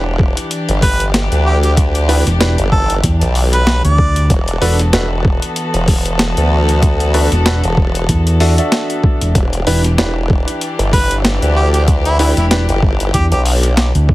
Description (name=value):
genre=glitch hop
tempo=95 BPM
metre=4/4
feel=swing 56% on 16ths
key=E minor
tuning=A4 = 439 Hz
part: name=warm chamber string section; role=sustained chords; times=0.0-14.1 s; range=E3 to A4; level=-22 LUFS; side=left 2 dB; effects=sidechain pumping
part: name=formant-sweep wobble bass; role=bass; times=0.0-13.9 s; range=E1 to D2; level=-15 LUFS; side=equal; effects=chorus, tube saturation
part: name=electronic kick drum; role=drums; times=0.2-14.1 s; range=none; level=-14 LUFS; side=equal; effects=overdrive
part: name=boom bap sampler-style drum kit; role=drums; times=0.4-14.1 s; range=hi-hat, snare drum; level=-19 LUFS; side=left 1 dB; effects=overdrive
part: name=warm harmonica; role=melody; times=0.8-4.3, 10.9-13.4 s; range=E4 to D5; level=-20 LUFS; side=right 1 dB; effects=digital delay
part: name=warm baby grand piano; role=stabs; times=2.1-12.6 s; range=D4 to E5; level=-20 LUFS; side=right 1 dB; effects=sidechain pumping, digital delay
part: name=overdriven fingered electric bass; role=bass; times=2.3-14.1 s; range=E1 to E2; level=-13 LUFS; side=equal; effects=none
room=little or no reverb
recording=heavily compressed radio sound, multiband compression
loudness=-11 LUFS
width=side -18 dB against mid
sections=0.0-14.1 A section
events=none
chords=0.0 Em7; 4.3 D6/E; 9.4 Em7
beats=0.51 1.14 | 1.77 2.40 3.04 3.67 | 4.30 4.93 5.56 6.19 | 6.83 7.46 8.09 8.72 | 9.35 9.98 10.62 11.25 | 11.88 12.51 13.14 13.77